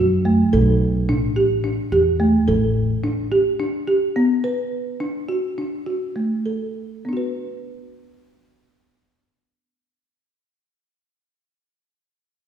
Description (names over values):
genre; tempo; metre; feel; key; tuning
contemporary instrumental, chamber music in an uneven meter; 210 BPM (eighths); 7/8; uneven beats; B minor; A4 = 442 Hz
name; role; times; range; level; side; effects
folk marimba with soft mallets; arpeggios; 0.0-11.0 s; A3 to B4; -19 LUFS; right 1 dB; none
upright bass; bass; 0.0-2.9 s; A1 to F#2; -20 LUFS; equal; none
room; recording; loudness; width
wet recital hall reverb, RT60 1.6 s; recorded in a church or concert hall; -18 LUFS; side -8 dB against mid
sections
0.0-7.0 A section; 7.0-11.1 B section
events
slowing down 3.0-7.0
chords
0.0 B7(no3); 1.1 A7sus4; 3.0 Bm; 5.0 D; 7.0 Bm